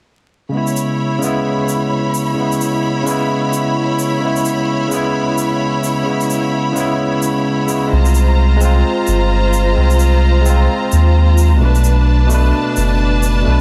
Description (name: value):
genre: future garage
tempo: 130 BPM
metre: 4/4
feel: swing 60% on 16ths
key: C# phrygian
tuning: A4 = 440 Hz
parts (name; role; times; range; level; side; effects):
- barky tine electric piano; accompaniment; 0.5-13.6 s; B2 to B4; -20 LUFS; equal; vintage 12-bit sampler grit, low-pass filter, tape echo
- rich symphonic string section; sustained chords; 0.5-13.6 s; D4 to B5; -22 LUFS; equal; vintage 12-bit sampler grit
- shaker; drums; 0.7-13.3 s; none; -30 LUFS; equal; overdrive
- warm sub bass; bass; 7.9-13.6 s; F#1 to D#2; -14 LUFS; equal; none
room: light reverb, digital ambience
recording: dense, heavily limited modern master, vinyl crackle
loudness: -15 LUFS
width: mono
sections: 0.5-13.6 A section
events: filter sweep on tine electric piano 0.5-13.6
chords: 0.5 C#m7; 7.9 G#69; 11.6 Bm7